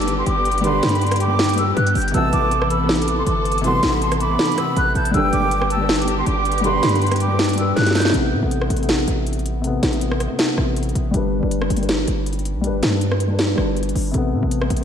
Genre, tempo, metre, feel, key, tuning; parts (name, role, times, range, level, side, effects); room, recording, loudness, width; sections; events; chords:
hip hop, trap; 160 BPM; 4/4; half-time; A minor; A4 = 440 Hz
concert flute; melody; 0.0-8.1 s; B5 to G6; -22 LUFS; right 1 dB; diffuse ambient delay
breathy concert flute; second line; 0.0-7.7 s; G5 to C6; -28 LUFS; right 5 dB; diffuse ambient delay
felt-muted upright piano; accompaniment; 0.0-14.8 s; C3 to B4; -24 LUFS; left 4 dB; low-pass filter
dark symphonic string section; sustained chords; 0.0-8.1 s; D3 to A4; -27 LUFS; equal
hard-hitting 808-style bass; bass; 0.0-14.8 s; F#1 to A2; -22 LUFS; equal
trap drum kit; drums; 0.0-14.8 s; hi-hat, rim click, snare drum; -23 LUFS; equal; overdrive, vintage 12-bit sampler grit
mellow brass ensemble; stabs; 0.6-7.0 s; B1 to E3; -26 LUFS; right 4 dB
wet lush hall reverb, RT60 1.7 s, small room ambience; dreamy mix soaked in reverb; -16 LUFS; side -8 dB against mid
0.0-8.1 A section; 8.1-14.8 B section
drum fill 7.8-8.1; filter sweep on felt piano 8.1-14.8
0.0 G; 2.1 Amadd9; 5.1 G; 8.1 Amadd9; 11.1 G; 14.1 Amadd9